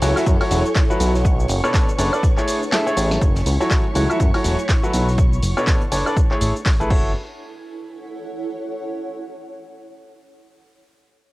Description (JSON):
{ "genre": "piano house", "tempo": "122 BPM", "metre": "4/4", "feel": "swing 59% on 16ths", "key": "F# minor", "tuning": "A4 = 440 Hz", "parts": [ { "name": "muted studio violin section", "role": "sustained chords", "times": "0.0-6.9 s", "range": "C#5 to C#6", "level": "-32 LUFS", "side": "right 1 dB", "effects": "sidechain pumping, low-pass filter, cassette tape" }, { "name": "bright grand piano", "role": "riff", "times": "0.0-7.1 s", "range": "B2 to E5", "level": "-22 LUFS", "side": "equal", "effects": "sidechain pumping, low-pass filter, cassette tape, tape echo" }, { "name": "fat analog bass", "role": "bass", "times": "0.0-7.1 s", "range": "E1 to F#2", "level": "-20 LUFS", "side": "equal", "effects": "sidechain pumping" }, { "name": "crisp fusion drum kit", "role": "drums", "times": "0.0-6.9 s", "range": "hi-hat, snare drum", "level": "-35 LUFS", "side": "left 1 dB", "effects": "sidechain pumping on hats, high-pass filter on hats, cassette tape, high-pass filter on snare, high-pass filter on room" }, { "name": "punchy analog drum machine", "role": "drums", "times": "0.0-7.0 s", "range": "cabasa, crash cymbal, handclaps, hi-hat, snare drum, woodblock", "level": "-26 LUFS", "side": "equal", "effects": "cassette tape" }, { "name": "granular cloud pad", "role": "texture", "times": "0.0-9.1 s", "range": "A3 to G#5", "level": "-29 LUFS", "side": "right 1 dB", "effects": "built-in reverb, sidechain pumping, cassette tape" }, { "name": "electronic kick drum", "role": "drums", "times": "0.3-7.0 s", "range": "none", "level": "-18 LUFS", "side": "equal", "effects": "cassette tape" } ], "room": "little or no reverb", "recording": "home recording on cassette", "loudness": "-16 LUFS", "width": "side -19 dB against mid", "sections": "0.0-3.2 A section; 3.2-7.1 B section; 7.1-9.1 C section", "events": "drop 0.0-3.2; kick drops out 2.7-3.2; drum fill 2.7-3.2; band accent 3.1; fade-out on ambient pad 3.2-7.1; filter sweep on analog synth bass 3.2-7.1; filter sweep on violin section 3.2-7.1", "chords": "0.0 F#m7; 1.2 Bm9; 2.2 Amaj7; 3.2 F#m7; 5.2 Bm9; 6.2 Amaj7; 6.9 F#m7" }